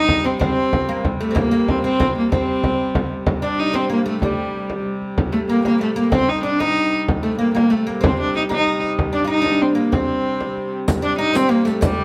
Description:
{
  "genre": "medieval dance",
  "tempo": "126 BPM (dotted quarters)",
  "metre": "6/8",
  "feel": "straight",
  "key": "C dorian",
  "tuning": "A4 = 440 Hz",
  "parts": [
    { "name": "rich viola da gamba", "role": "melody", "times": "0.0-12.0 s", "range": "G3 to Eb4", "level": "-22 LUFS", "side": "equal", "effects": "none" },
    { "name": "oud", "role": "second line", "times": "0.0-12.0 s", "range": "G3 to F4", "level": "-28 LUFS", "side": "equal", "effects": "none" },
    { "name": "warm hurdy-gurdy", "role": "drone", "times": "0.0-12.0 s", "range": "C3 to G3", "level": "-29 LUFS", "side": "equal", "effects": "none" },
    { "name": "frame drum", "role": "percussion", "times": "0.1-12.0 s", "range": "none", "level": "-24 LUFS", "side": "equal", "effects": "none" },
    { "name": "riq", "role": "percussion", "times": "10.9-12.0 s", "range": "none", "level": "-32 LUFS", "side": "equal", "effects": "none" }
  ],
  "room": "moderate stone room reverb, RT60 1.0 s",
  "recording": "band playing live in one room",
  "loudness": "-19 LUFS",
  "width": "mono",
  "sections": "0.0-3.3 A section; 3.3-10.9 B section; 10.9-12.0 B section",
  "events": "none",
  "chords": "none",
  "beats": "| 0.40 0.88 | 1.36 1.84 | 2.31 2.79 | 3.27 3.75 | 4.22 4.70 | 5.17 5.65 | 6.13 6.60 | 7.08 7.55 | 8.03 8.50 | 8.98 9.45 | 9.93 10.40 | 10.87 11.35 | 11.82"
}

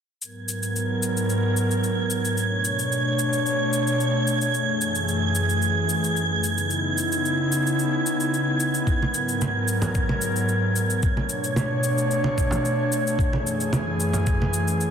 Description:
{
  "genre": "sunset chillout",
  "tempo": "111 BPM",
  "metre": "4/4",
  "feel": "straight",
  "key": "G# phrygian",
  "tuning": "A4 = 440 Hz",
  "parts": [
    { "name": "airy breathy pad", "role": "sustained chords", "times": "0.4-14.9 s", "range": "F#2 to C#5", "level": "-23 LUFS", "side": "equal", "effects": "chorus" },
    { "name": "cabasa", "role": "drums", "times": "0.2-14.9 s", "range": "none", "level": "-30 LUFS", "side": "left 4 dB", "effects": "overdrive" },
    { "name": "wind-like tuned noise texture", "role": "texture", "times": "0.4-14.9 s", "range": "G#6", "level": "-28 LUFS", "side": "right 4 dB", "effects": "built-in reverb" },
    { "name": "electronic kick drum", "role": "drums", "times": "8.9-14.4 s", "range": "none", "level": "-24 LUFS", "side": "left 1 dB", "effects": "none" },
    { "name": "congas", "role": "percussion", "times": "9.0-14.5 s", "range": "none", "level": "-28 LUFS", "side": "right 1 dB", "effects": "none" }
  ],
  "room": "moderate digital room reverb, RT60 1.3 s",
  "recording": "dense, heavily limited modern master",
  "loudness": "-21 LUFS",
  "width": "side -7 dB against mid",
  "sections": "0.2-14.9 A section",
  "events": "none",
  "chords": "0.2 G#m9; 2.4 Bm9; 4.5 F#m9; 6.4 C#m9; 8.9 G#m9; 11.0 Bm9; 13.2 F#m9",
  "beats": "| 0.22 0.76 1.30 1.84 | 2.38 2.92 3.46 4.00 | 4.54 5.08 5.62 6.17 | 6.71 7.25 7.79 8.33 | 8.87 9.41 9.95 10.49 | 11.03 11.57 12.11 12.65 | 13.19 13.73 14.27 14.81"
}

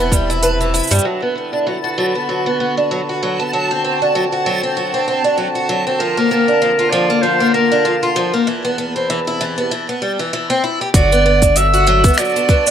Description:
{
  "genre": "folktronica",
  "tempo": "97 BPM",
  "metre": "4/4",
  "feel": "swing 56% on 16ths",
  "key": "unclear",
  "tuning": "A4 = 440 Hz",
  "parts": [
    { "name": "pedal harmonium", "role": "sustained chords", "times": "0.0-12.7 s", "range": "E2 to A5", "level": "-23 LUFS", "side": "equal", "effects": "none" },
    { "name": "picked twelve-string acoustic guitar", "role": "arpeggios", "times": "0.0-12.7 s", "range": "E3 to B4", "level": "-17 LUFS", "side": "equal", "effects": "low-pass filter, tape echo" },
    { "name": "warm sub bass", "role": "bass", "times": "0.0-1.0, 10.9-12.1 s", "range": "E1 to G2", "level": "-17 LUFS", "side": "equal", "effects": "none" },
    { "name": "backwards swelling texture", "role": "texture", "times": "0.0-12.7 s", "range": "A5", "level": "-25 LUFS", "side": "right 2 dB", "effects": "built-in reverb" },
    { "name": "electronic kick drum", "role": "drums", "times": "0.1-0.3, 10.9-12.6 s", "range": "none", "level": "-13 LUFS", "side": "equal", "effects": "small room ambience" },
    { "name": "organic electronic drum kit", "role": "drums", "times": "0.1-12.7 s", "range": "finger snaps, hi-hat, shaker", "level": "-20 LUFS", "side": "right 2 dB", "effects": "low-pass filter on perc, small room ambience, low-pass filter on hats, low-pass filter on snare" },
    { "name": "warm clarinet", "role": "melody", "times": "6.0-12.7 s", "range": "Bb4 to E5", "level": "-15 LUFS", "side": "right 2 dB", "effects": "tape echo" }
  ],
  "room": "moderate plate reverb, RT60 1.7 s",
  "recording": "none",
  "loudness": "-13 LUFS",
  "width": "side -9 dB against mid",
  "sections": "0.0-1.0 A section; 1.0-10.9 B section; 10.9-12.7 C section",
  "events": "none",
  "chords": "0.0 Cmaj7/E; 1.0 D6; 3.5 D7; 6.0 Bbmaj7/D; 8.5 Cmaj7/E; 10.9 Gmaj7",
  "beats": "0.43 | 1.04 1.66 2.28 2.90 | 3.52 4.14 4.75 5.37 | 5.99 6.61 7.23 7.85 | 8.47 9.09 9.70 10.32 | 10.94 11.56 12.18"
}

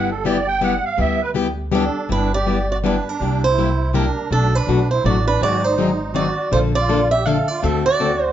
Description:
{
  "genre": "acoustic string swing (jazz manouche)",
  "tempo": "163 BPM",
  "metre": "3/4",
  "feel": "swing 61% on 8ths",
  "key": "G major",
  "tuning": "A4 = 438 Hz",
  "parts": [
    { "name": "musette accordion", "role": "second line", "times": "0.0-8.3 s", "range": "D4 to G5", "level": "-24 LUFS", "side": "right 4 dB", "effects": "none" },
    { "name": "picked plugged-in steel-string acoustic guitar", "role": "accompaniment", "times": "0.0-8.1 s", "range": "B2 to A4", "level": "-21 LUFS", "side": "left 4 dB", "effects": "none" },
    { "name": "upright bass", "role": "bass", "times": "0.0-8.3 s", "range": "G1 to D2", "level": "-22 LUFS", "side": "equal", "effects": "none" },
    { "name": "picked swing-style acoustic guitar", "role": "melody", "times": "1.7-8.3 s", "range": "A4 to F5", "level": "-20 LUFS", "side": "right 3 dB", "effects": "none" }
  ],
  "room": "moderate club reverb, RT60 0.8 s",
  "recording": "nothing above 7.5 kHz",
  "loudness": "-16 LUFS",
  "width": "side -11 dB against mid",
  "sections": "0.0-2.1 A section; 2.1-8.3 B section",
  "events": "accordion solo 0.0-2.1",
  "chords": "0.0 G6; 3.2 C9; 4.3 Bm7; 5.4 Ab7; 6.5 Bbmaj7; 7.6 D7",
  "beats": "0.26 0.62 | 0.99 1.36 1.73 | 2.10 2.46 2.83 | 3.20 3.57 3.94 | 4.30 4.67 5.04 | 5.41 5.78 6.15 | 6.51 6.88 7.25 | 7.62 7.99"
}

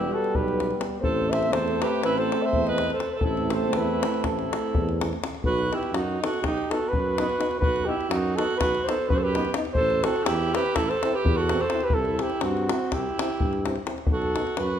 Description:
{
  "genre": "balkan folk, Balkan brass band",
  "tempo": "249 BPM (eighths)",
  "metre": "9/8",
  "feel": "straight",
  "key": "unclear",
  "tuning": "A4 = 440 Hz",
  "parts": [
    { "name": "dark flugelhorn", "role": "melody", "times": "0.0-14.8 s", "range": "F#4 to E5", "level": "-27 LUFS", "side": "equal", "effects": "none" },
    { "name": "clear alto saxophone", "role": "second line", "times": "0.0-14.8 s", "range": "C4 to C5", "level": "-30 LUFS", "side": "right 4 dB", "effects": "none" },
    { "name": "warm euphonium", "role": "accompaniment", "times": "0.0-14.4 s", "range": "B3 to E4", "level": "-33 LUFS", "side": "left 6 dB", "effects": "none" },
    { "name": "warm trombone", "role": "accompaniment", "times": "0.0-14.4 s", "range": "G3 to C4", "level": "-34 LUFS", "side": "right 4 dB", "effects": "none" },
    { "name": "mellow tuba", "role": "bass", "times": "0.0-14.8 s", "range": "E1 to G2", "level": "-30 LUFS", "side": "right 1 dB", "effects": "none" },
    { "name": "davul", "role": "percussion", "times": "0.2-14.7 s", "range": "none", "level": "-29 LUFS", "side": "left 2 dB", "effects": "none" }
  ],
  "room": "moderate recital hall reverb, RT60 1.6 s",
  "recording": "minimal, uncompressed stereo recording",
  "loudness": "-22 LUFS",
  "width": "side -9 dB against mid",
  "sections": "0.0-5.4 A section; 5.4-14.8 B section",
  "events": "speeding up 0.0-14.8",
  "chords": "0.0 Em (rootless); 1.0 Am; 5.4 B; 9.8 Am; 11.9 C; 14.1 B",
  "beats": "0.04 0.28 0.53 0.78 | 1.02 1.27 1.52 1.76 2.01 2.25 2.50 2.75 2.99 | 3.23 3.48 3.72 3.97 4.21 4.45 4.70 4.94 5.18 | 5.43 5.67 5.91 6.15 6.40 6.64 6.88 7.12 7.36 | 7.60 7.84 8.08 8.32 8.57 8.81 9.05 9.29 9.53 | 9.77 10.01 10.25 10.49 10.73 10.97 11.21 11.45 11.68 | 11.92 12.16 12.40 12.64 12.88 13.12 13.36 13.60 13.84 | 14.07 14.31 14.55 14.79"
}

